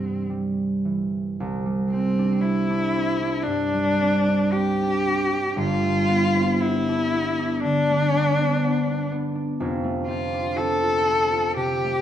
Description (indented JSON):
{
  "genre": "classical, impressionist duo for cello and harp",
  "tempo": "53-62 BPM",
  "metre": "4/4",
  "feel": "rubato",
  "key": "C major",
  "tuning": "A4 = 440 Hz",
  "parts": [
    { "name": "rich cello", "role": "melody", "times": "0.0-12.0 s", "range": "C4 to A4", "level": "-23 LUFS", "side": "left 2 dB", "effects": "none" },
    { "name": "concert harp", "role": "accompaniment", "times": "0.0-12.0 s", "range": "F1 to F4", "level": "-23 LUFS", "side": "right 1 dB", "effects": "none" }
  ],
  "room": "wet recital hall reverb, RT60 1.3 s",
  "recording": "minimal, uncompressed stereo recording",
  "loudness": "-20 LUFS",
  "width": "side -10 dB against mid",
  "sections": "0.0-1.4 A section; 1.4-12.0 B section",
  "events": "none",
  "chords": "0.0 C; 1.4 Cadd9; 5.6 G9; 9.6 F"
}